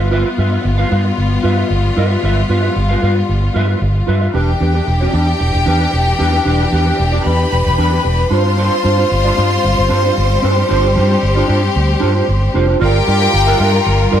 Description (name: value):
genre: disco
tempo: 113 BPM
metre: 4/4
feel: straight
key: unclear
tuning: A4 = 440 Hz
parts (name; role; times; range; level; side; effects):
- mellow electric guitar; accompaniment; 0.0-14.2 s; D4 to F5; -19 LUFS; right 3 dB; analog chorus
- clear symphonic string section; sustained chords; 0.0-14.2 s; E3 to Bb4; -19 LUFS; left 3 dB; none
- fretless electric bass; bass; 0.0-14.2 s; E1 to G2; -15 LUFS; equal; none
- rich studio violin section; second line; 4.4-14.2 s; G4 to C6; -18 LUFS; left 2 dB; none
room: light reverb, studio reverb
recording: none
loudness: -12 LUFS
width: side -10 dB against mid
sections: 0.0-4.3 A section; 4.3-12.8 B section; 12.8-14.2 C section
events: none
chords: 0.0 G6; 4.3 Em7; 8.3 G7sus4; 12.8 Gm7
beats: | 0.11 0.64 1.17 1.70 | 2.23 2.76 3.29 3.82 | 4.35 4.88 5.41 5.94 | 6.46 7.00 7.52 8.05 | 8.58 9.11 9.64 10.17 | 10.70 11.23 11.76 12.29 | 12.81 13.34 13.87